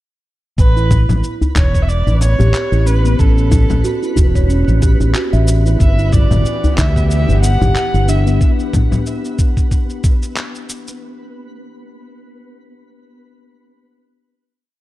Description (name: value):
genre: organic downtempo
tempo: 92 BPM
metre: 4/4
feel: swing 56% on 16ths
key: E dorian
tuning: A4 = 440 Hz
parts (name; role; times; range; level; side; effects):
- rich kamancheh; melody; 0.6-8.4 s; A4 to F#5; -24 LUFS; equal; digital delay
- fretless electric bass; bass; 0.6-8.4 s; E1 to D2; -13 LUFS; equal; sidechain pumping
- electronic kick drum; drums; 0.6-10.2 s; none; -14 LUFS; equal; none
- electronic shaker, congas and handclaps; drums; 0.6-11.0 s; none; -20 LUFS; left 1 dB; none
- twinkling granular texture; texture; 1.2-11.0 s; B3 to B4; -32 LUFS; right 2 dB; built-in reverb
- steel tongue drum; arpeggios; 0.8-8.3 s; B3 to E5; -22 LUFS; right 1 dB; digital delay
- djembe; percussion; 1.1-7.7 s; none; -20 LUFS; left 1 dB; none
- bowed-like drone; sustained chords; 6.3-8.4 s; E3 to F#5; -28 LUFS; left 1 dB; built-in reverb, sidechain pumping
room: little or no reverb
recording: dark, warm production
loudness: -12 LUFS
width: side -16 dB against mid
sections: 0.6-11.0 groove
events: none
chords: 0.6 A5; 5.8 Em/G